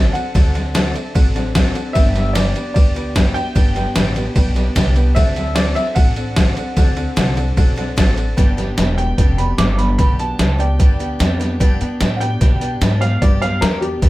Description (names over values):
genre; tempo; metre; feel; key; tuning
rockabilly; 149 BPM; 4/4; straight; G mixolydian from 8.4 s; A4 = 436 Hz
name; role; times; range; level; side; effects
honky-tonk upright piano; accompaniment; 0.0-14.1 s; A4 to G5; -30 LUFS; right 4 dB; none
picked steel-string acoustic guitar; accompaniment; 0.0-14.1 s; G2 to A4; -25 LUFS; left 2 dB; none
upright bass; bass; 0.0-14.1 s; E1 to B2; -19 LUFS; equal; none
warm upright piano; melody; 0.1-14.1 s; G4 to D6; -24 LUFS; equal; none
trip hop sampler-style drum kit; drums; 0.2-14.1 s; hi-hat, kick drum, ride cymbal, snare drum; -16 LUFS; equal; overdrive
room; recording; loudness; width
light reverb; band playing live in one room; -14 LUFS; side -18 dB against mid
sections
0.0-8.4 A section; 8.4-14.1 B section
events
break 8.2; upright piano solo 8.4-14.1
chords
0.0 D7; 2.0 G; 5.2 D7; 8.4 G